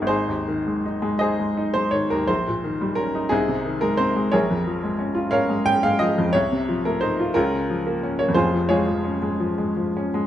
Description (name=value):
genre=classical, romantic character piece for solo piano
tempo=51-62 BPM (dotted quarters)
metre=6/8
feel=rubato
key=Ab major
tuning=A4 = 441 Hz
part: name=clear upright piano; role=solo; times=0.0-10.3 s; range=F1 to G5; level=-20 LUFS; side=equal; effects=none
room=wet stone room reverb, RT60 1.0 s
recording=nothing above 10.8 kHz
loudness=-20 LUFS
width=side -11 dB against mid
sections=0.1-10.3 A section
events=none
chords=0.1 Ab; 2.3 Eb7/Bb; 3.3 Ab/C; 4.3 Bbm7; 6.3 F7/C; 7.4 Bbm/Db; 8.4 Db/F